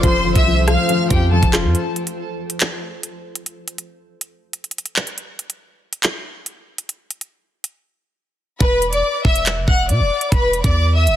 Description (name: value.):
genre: hip hop, drill.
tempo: 140 BPM.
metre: 4/4.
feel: half-time.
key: E minor.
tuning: A4 = 436 Hz.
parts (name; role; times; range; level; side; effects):
warm symphonic violin section; melody; 0.0-1.5, 8.6-11.2 s; G4 to F#6; -19 LUFS; left 1 dB; ping-pong delay.
dark baby grand piano; accompaniment; 0.0-1.8 s; F3 to F4; -21 LUFS; left 5 dB; none.
granular cloud pad; sustained chords; 0.0-1.7 s; F3 to C5; -26 LUFS; right 1 dB; built-in reverb.
long sustained 808-style bass; bass; 0.0-1.7, 8.6-11.2 s; E1 to B2; -18 LUFS; right 1 dB; none.
drill drum kit; drums; 0.0-11.2 s; handclaps, hi-hat, kick drum, rim click; -19 LUFS; right 1 dB; none.
room: digital ambience.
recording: heavily compressed radio sound.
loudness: -15 LUFS.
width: side -11 dB against mid.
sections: 0.0-1.7 A section; 1.7-11.2 B section.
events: break 1.7-8.6.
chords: 0.0 F; 1.7 N.C.; 8.6 E5.